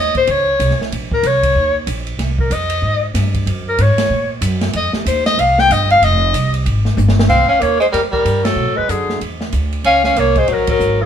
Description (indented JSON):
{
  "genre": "jazz, small-group swing and bop",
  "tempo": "188 BPM",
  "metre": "4/4",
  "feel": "swing 61% on 8ths",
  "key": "F minor",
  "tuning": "A4 = 440 Hz",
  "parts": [
    { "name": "bright clarinet", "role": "melody", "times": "0.0-11.1 s", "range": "G4 to G5", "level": "-15 LUFS", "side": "left 2 dB", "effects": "none" },
    { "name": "upright bass", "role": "bass", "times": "0.0-11.1 s", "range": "F1 to B2", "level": "-18 LUFS", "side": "equal", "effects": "none" },
    { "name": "open jazz drum kit", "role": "drums", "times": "0.1-10.9 s", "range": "crash cymbal, hi-hat, kick drum, ride cymbal, snare drum, toms", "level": "-22 LUFS", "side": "right 1 dB", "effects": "none" },
    { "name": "bright tenor saxophone", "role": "second line", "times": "7.3-11.1 s", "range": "D3 to Db4", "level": "-18 LUFS", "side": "right 1 dB", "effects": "none" }
  ],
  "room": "moderate studio reverb, RT60 0.9 s",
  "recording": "band playing live in one room",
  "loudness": "-13 LUFS",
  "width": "side -9 dB against mid",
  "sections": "0.0-7.3 A section; 7.3-11.1 B section",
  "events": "clarinet solo 0.0-7.3; drum fill 7.0-7.3; band accent 8.4, 10.6",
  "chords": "0.0 N.C.; 0.9 Bbmadd9; 1.6 Eb5; 2.2 Ab6; 3.5 Gbadd9; 4.7 Fm9; 7.3 F9sus4; 8.6 Bm7; 9.2 Dsus2; 9.8 Gb"
}